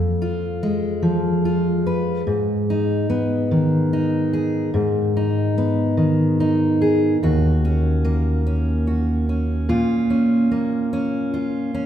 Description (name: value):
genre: acoustic folk duo or small band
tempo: 49 BPM (dotted quarters)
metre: 6/8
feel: straight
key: Eb minor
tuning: A4 = 441 Hz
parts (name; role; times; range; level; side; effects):
- fingerpicked steel-string acoustic guitar; solo; 0.0-11.9 s; Eb2 to Cb5; -18 LUFS; equal; none
room: wet recital hall reverb, RT60 1.7 s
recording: recorded in a church or concert hall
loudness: -18 LUFS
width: side -10 dB against mid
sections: 0.0-7.2 A section; 7.2-11.9 B section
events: none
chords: 0.0 Fdim; 2.3 Abm; 7.2 Ebm7; 9.7 Bbm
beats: 1.04 | 2.27 3.51 | 4.74 5.98 | 7.21 8.45 | 9.68 10.91